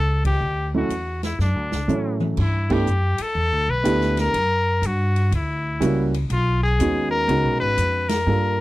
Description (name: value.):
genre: jazz, small-group swing and bop.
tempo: 122 BPM.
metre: 4/4.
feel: swing 66% on 8ths.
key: unclear.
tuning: A4 = 440 Hz.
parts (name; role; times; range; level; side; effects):
clear trumpet; melody; 0.0-8.6 s; D4 to B4; -23 LUFS; left 2 dB; none.
upright bass; bass; 0.0-8.6 s; G#1 to A2; -22 LUFS; equal; none.
open jazz drum kit; drums; 0.2-8.2 s; crash cymbal, hi-hat, kick drum, ride cymbal, snare drum, toms; -32 LUFS; equal; none.
warm upright piano; accompaniment; 0.7-8.6 s; F#3 to A4; -23 LUFS; right 2 dB; none.
room: little or no reverb.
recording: dry, close 1970s-style studio recording.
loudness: -19 LUFS.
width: side -17 dB against mid.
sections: 0.0-2.4 A section; 2.4-8.6 B section.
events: band accent 0.2, 2.6, 8.0; drum fill 1.4-2.4.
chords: 0.0 Dmaj7; 2.4 G69; 4.3 F#7b9; 6.3 B69.